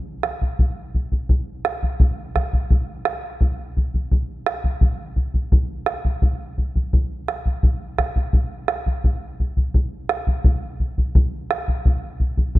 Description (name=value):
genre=andean folk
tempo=85 BPM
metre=4/4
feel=straight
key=none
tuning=none
part: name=bombo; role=percussion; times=0.2-12.6 s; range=none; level=-19 LUFS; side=equal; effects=none
room=light reverb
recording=dark, warm production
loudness=-19 LUFS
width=side -17 dB against mid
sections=0.0-12.6 A section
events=none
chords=none